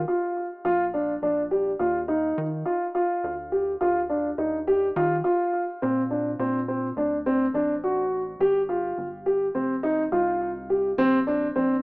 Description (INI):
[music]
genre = progressive instrumental, progressive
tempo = 209 BPM (eighths)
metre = 9/8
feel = straight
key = Bb major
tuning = A4 = 442 Hz
[part]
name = rubbery square bass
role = bass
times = 0.0-11.8 s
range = F1 to Eb3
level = -36 LUFS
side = equal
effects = none
[part]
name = warm grand piano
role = arpeggios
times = 0.1-11.7 s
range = C4 to G4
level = -22 LUFS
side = equal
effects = digital delay
[sound]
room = light reverb, small room reverb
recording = rough home demo mix, small speaker sound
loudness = -22 LUFS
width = side -29 dB against mid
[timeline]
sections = 0.0-5.8 A section; 5.8-11.8 B section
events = none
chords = 0.0 N.C.; 0.7 Bb; 1.8 Ebsus2; 3.2 G5/D; 4.4 Ebadd9; 5.8 Bbadd9; 7.0 D7; 8.4 Fsus2/G; 9.6 F5; 11.0 Bbadd9